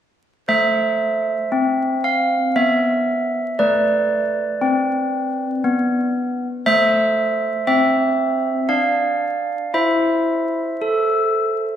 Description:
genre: classical, tune for handbells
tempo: 58 BPM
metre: 3/4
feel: straight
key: A minor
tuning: A4 = 440 Hz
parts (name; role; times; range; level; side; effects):
- handbells; solo; 0.5-11.8 s; A3 to F5; -16 LUFS; equal; none
room: wet recital hall reverb, RT60 1.5 s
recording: recorded in a church or concert hall, vinyl crackle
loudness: -17 LUFS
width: side -10 dB against mid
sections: 0.5-11.8 A section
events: none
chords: 0.5 Am; 8.7 N.C.; 9.8 Am/E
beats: | 0.48 1.52 2.56 | 3.59 4.62 5.64 | 6.66 7.67 8.70 | 9.75 10.81

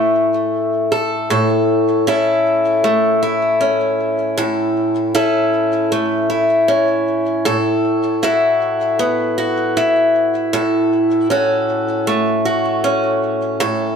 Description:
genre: folktronica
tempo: 78 BPM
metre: 4/4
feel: swing 56% on 16ths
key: A major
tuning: A4 = 441 Hz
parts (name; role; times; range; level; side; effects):
- picked old ladder-braced acoustic guitar; solo; 0.0-14.0 s; A2 to A4; -14 LUFS; equal; ping-pong delay
room: moderate echo chamber reverb, RT60 1.6 s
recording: none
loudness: -14 LUFS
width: side -6 dB against mid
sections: 0.0-1.3 A section; 1.3-14.0 B section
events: none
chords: 0.0 A; 7.5 Esus2/A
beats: 0.53 | 1.30 2.07 2.84 3.61 | 4.38 5.15 5.92 6.69 | 7.46 8.22 8.99 9.76 | 10.53 11.30 12.07 12.84 | 13.61

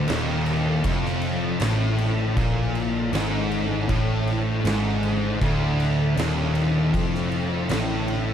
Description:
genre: stoner and doom metal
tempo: 79 BPM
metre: 4/4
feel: straight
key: D minor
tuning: A4 = 439 Hz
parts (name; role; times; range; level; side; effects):
- ensemble organ-string; sustained chords; 0.0-8.3 s; D3 to A4; -35 LUFS; equal; ensemble chorus
- distorted electric guitar; riff; 0.0-8.3 s; D2 to Bb2; -29 LUFS; equal; overdrive
- thick fuzz guitar; riff; 0.0-8.3 s; D2 to Bb2; -26 LUFS; left 5 dB; distortion
- thick fuzz guitar; riff; 0.0-8.3 s; D2 to Bb2; -28 LUFS; right 7 dB; distortion
- picked electric bass; bass; 0.0-8.3 s; D1 to Bb1; -29 LUFS; equal; overdrive
- oversized low-tuned drum kit; drums; 0.1-8.3 s; crash cymbal, kick drum, snare drum; -29 LUFS; equal; none
room: moderate large studio reverb, RT60 1.2 s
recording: dark, warm production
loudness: -21 LUFS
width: side -9 dB against mid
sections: 0.0-8.3 A section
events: none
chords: 0.0 Dm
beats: 0.08 0.85 1.61 | 2.37 3.13 3.90 4.66 | 5.42 6.18 6.94 7.70

